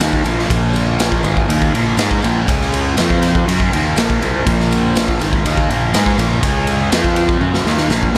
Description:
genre	psychedelic rock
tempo	122 BPM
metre	4/4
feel	straight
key	Bb minor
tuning	A4 = 435 Hz
part	combo organ	sustained chords	0.0-8.2 s	F3 to Db5	-28 LUFS	equal	none
part	fuzz guitar	riff	0.0-8.2 s	Ab2 to Ab4	-20 LUFS	equal	distortion, phaser
part	fuzz fingered electric bass	bass	0.0-8.2 s	Ab1 to Ab2	-22 LUFS	equal	overdrive
part	raw garage drum kit	drums	0.0-8.2 s	kick drum, ride cymbal, snare drum, toms	-20 LUFS	equal	none
part	tambourine	percussion	0.2-8.2 s	none	-37 LUFS	equal	none
room	light reverb, small room ambience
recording	none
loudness	-16 LUFS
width	mono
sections	0.0-8.2 A section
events	drum fill 7.4-8.2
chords	0.0 Bbm; 2.5 Db5; 3.0 F5; 3.5 Bbm; 6.4 Db5; 6.9 F5; 7.4 Bbm

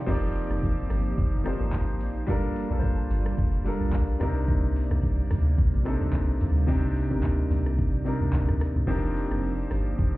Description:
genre	amapiano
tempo	109 BPM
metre	4/4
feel	swing 55% on 16ths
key	unclear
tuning	A4 = 441 Hz
part	warm concert grand piano	accompaniment	0.0-10.2 s	C3 to G5	-30 LUFS	left 1 dB	none
part	hollow soft pad	sustained chords	0.0-10.2 s	C3 to A5	-35 LUFS	right 3 dB	ensemble chorus, sidechain pumping
part	deep log drum bass	bass	0.1-10.2 s	F1 to D2	-26 LUFS	equal	none
part	afro-pop drum kit	drums	0.1-10.2 s	crash cymbal, handclaps, hi-hat, kick drum, rim click, shaker, toms	-28 LUFS	equal	none
room	digital ambience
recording	heard muffled through a wall, club reverb, EQ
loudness	-23 LUFS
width	side -18 dB against mid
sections	0.1-10.2 A section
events	drop 0.1-10.2; break 8.9-10.0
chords	0.1 F13sus4; 2.3 Gm9; 4.2 Cm9; 8.9 F13sus4

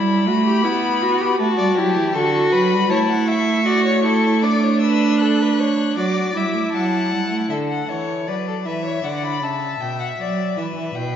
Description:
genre	classical, baroque-style fugue for string quartet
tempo	78 BPM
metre	4/4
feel	straight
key	unclear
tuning	A4 = 439 Hz
part	rich violin	melody	0.0-11.2 s	C#5 to F#6	-24 LUFS	left 8 dB	none
part	rich viola	accompaniment	0.0-7.5 s	D4 to G4	-20 LUFS	right 2 dB	none
part	rich cello	bass	0.0-11.2 s	B2 to B3	-21 LUFS	right 3 dB	none
part	rich violin	second line	1.6-11.2 s	G4 to F#5	-25 LUFS	left 4 dB	none
room	wet scoring stage reverb, RT60 1.6 s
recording	dark, warm production, nothing above 7.8 kHz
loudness	-17 LUFS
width	side -9 dB against mid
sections	0.0-7.5 A section; 7.5-11.2 B section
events	none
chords	0.0 G; 1.4 D; 2.9 A; 4.4 D/A; 6.0 D/F#; 7.5 D; 9.0 Bm; 10.6 Em

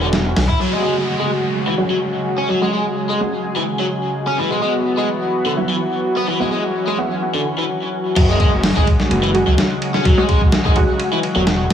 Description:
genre	breakbeat, breaks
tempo	127 BPM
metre	4/4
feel	straight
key	unclear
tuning	A4 = 441 Hz
part	lush unison pad	sustained chords	0.0-11.7 s	C#3 to G#4	-21 LUFS	equal	chorus, sidechain pumping
part	overdriven electric guitar	riff	0.0-11.4 s	D3 to E4	-20 LUFS	left 1 dB	low-pass filter, digital delay
part	phased detuned saw bass	bass	0.0-0.5, 8.2-11.7 s	E1 to C#2	-18 LUFS	equal	phaser
part	dusty soul sampler-style drum kit	drums	0.1-0.6, 8.2-11.7 s	crash cymbal, hi-hat, kick drum, ride cymbal, snare drum	-16 LUFS	equal	none
part	downlifter	sound effects	0.6-4.4 s	none	-29 LUFS	equal	none
part	orchestra-hit-like synth stab	stabs	1.8-10.9 s	F#3 to F#4	-22 LUFS	right 1 dB	built-in reverb, digital delay
room	moderate plate reverb, RT60 1.5 s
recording	heavily compressed radio sound, multiband compression, small room ambience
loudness	-15 LUFS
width	side -9 dB against mid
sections	0.6-8.2 A section; 8.2-11.7 B section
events	filter sweep on synth stab 0.6-8.2; break 7.7-8.2; drop 8.2-11.7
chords	0.0 Esus2; 0.6 F#sus2; 4.4 Esus2; 8.2 F#sus2

